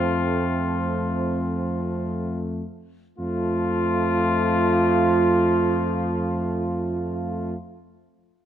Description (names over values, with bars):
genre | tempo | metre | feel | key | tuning
classical, hymn-like piece for brass band | free time | none | none | F major | A4 = 440 Hz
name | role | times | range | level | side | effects
clear flugelhorn | melody | 0.0-7.5 s | F4 | -28 LUFS | left 6 dB | none
warm French horn section | second line | 0.0-7.5 s | C4 to F4 | -26 LUFS | right 5 dB | none
bright trombone | accompaniment | 0.0-7.6 s | F3 | -30 LUFS | right 4 dB | none
warm trombone section | accompaniment | 0.0-7.5 s | A3 | -29 LUFS | left 3 dB | none
dark tuba | bass | 0.0-7.6 s | F2 | -27 LUFS | right 1 dB | none
room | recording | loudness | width
light reverb | none | -21 LUFS | side -10 dB against mid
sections
0.0-3.2 A section; 3.2-8.5 B section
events
slowing down 0.0-3.2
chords
0.0 F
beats
free time